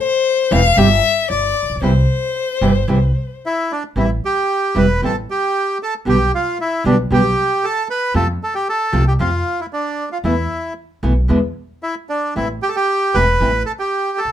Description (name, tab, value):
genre	tango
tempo	114 BPM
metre	4/4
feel	rubato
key	C major, A minor from 4.0 s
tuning	A4 = 440 Hz
part	warm violin	second line	0.0-3.4 s	C5 to F5	-17 LUFS	left 6 dB	none
part	nylon-string guitar	accompaniment	0.5-13.5 s	B2 to G4	-18 LUFS	right 1 dB	none
part	upright bass	bass	0.5-14.3 s	E1 to F2	-18 LUFS	equal	none
part	bandoneon	melody	3.5-14.3 s	D4 to B4	-18 LUFS	right 1 dB	none
room	moderate club reverb, RT60 0.6 s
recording	minimal, uncompressed stereo recording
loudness	-15 LUFS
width	side -10 dB against mid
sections	0.0-4.0 A section; 4.0-14.3 B section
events	violin solo 0.0-4.0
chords	0.0 Am (rootless); 0.8 Gsus4; 1.3 Gsus2; 1.8 C; 4.0 Am7; 6.1 G/B; 8.1 F; 10.2 Esus4; 11.3 E7(no3); 12.4 Am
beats	0.26 0.78 1.30 | 1.82 2.35 2.88 3.42 | 3.96 4.49 5.02 5.54 | 6.07 6.59 7.11 7.63 | 8.15 8.67 9.19 9.72 | 10.24 10.77 11.30 11.83 | 12.36 12.88 13.41 13.93